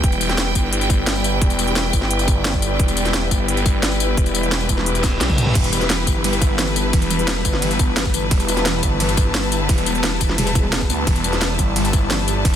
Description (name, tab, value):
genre	dark technical drum and bass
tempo	174 BPM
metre	4/4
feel	straight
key	E minor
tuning	A4 = 441 Hz
part	dark analog pad	sustained chords	0.0-12.6 s	G3 to D5	-26 LUFS	left 2 dB	wide subtle chorus, sidechain pumping
part	phased detuned saw bass	bass	0.0-12.6 s	E1 to D2	-22 LUFS	equal	phaser, tube saturation
part	drum and bass drum kit	drums	0.0-12.6 s	crash cymbal, hi-hat, ride cymbal, snare drum, tambourine, toms	-22 LUFS	left 1 dB	none
part	electronic kick drum	drums	0.0-12.5 s	none	-18 LUFS	equal	none
part	bright studio string section	texture	0.0-12.6 s	E4 to A5	-24 LUFS	left 1 dB	sidechain pumping
part	reverse cymbal	sound effects	5.0-5.6 s	none	-28 LUFS	right 2 dB	none
part	soft round pluck	arpeggios	5.6-12.6 s	E3 to E4	-28 LUFS	right 3 dB	lush chorus, sidechain pumping, digital delay
part	metallic wobble bass	bass	10.4-10.9 s	E1	-22 LUFS	equal	chorus, tube saturation
room	little or no reverb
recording	dense, heavily limited modern master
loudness	-16 LUFS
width	side -10 dB against mid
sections	0.0-12.6 A section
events	reverse cymbal 5.0-5.6; drum fill 5.0-5.6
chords	0.0 Em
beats	| 0.04 0.38 0.73 1.07 | 1.42 1.76 2.10 2.45 | 2.79 3.14 3.48 3.83 | 4.17 4.52 4.86 5.21 | 5.55 5.90 6.24 6.59 | 6.93 7.28 7.62 7.97 | 8.31 8.66 9.00 9.35 | 9.69 10.04 10.38 10.73 | 11.07 11.42 11.76 12.11 | 12.45